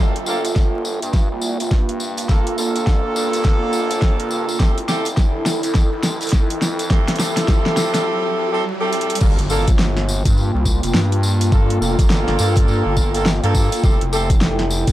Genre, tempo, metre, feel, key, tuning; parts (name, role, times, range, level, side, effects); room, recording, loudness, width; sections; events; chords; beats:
glitch hop; 104 BPM; 4/4; swing 61% on 16ths; G dorian; A4 = 441 Hz
clear horn section; stabs; 0.0-14.3 s; Bb3 to A4; -22 LUFS; right 1 dB; vintage 12-bit sampler grit, sidechain pumping, low-pass filter, tape echo
gritty driven synth bass; bass; 0.0-14.9 s; F1 to G2; -22 LUFS; equal; distortion, high-pass filter
riser and impact; sound effects; 0.0-11.5 s; -31 LUFS; right 1 dB
airy breathy pad; texture; 0.0-14.9 s; Bb3 to G5; -25 LUFS; equal; chorus, sidechain pumping
pop drum kit; drums; 0.2-14.9 s; crash cymbal, hi-hat, snare drum; -22 LUFS; equal; overdrive
tambourine; percussion; 0.3-14.9 s; -29 LUFS; left 2 dB
electronic kick drum; drums; 0.6-14.9 s; -16 LUFS; equal; overdrive
little or no reverb; dry, gritty hardware recording, transformer saturation, vinyl crackle; -15 LUFS; side -14 dB against mid
0.0-9.2 A section; 9.2-14.9 B section
build-up 0.0-9.2; drum fill 0.0-8.1, 8.9; riser 0.0-9.2; break 8.1-9.2; drop 9.2-14.9; impact 9.2-11.5
0.0 Gm7; 4.6 Fmaj9; 9.2 Gm7; 13.8 Fmaj9
0.56 1.14 1.72 | 2.29 2.87 3.45 4.03 | 4.60 5.18 5.76 6.33 | 6.91 7.49 8.06 8.64 | 9.22 9.79 10.37 10.95 | 11.53 12.10 12.68 13.26 | 13.83 14.41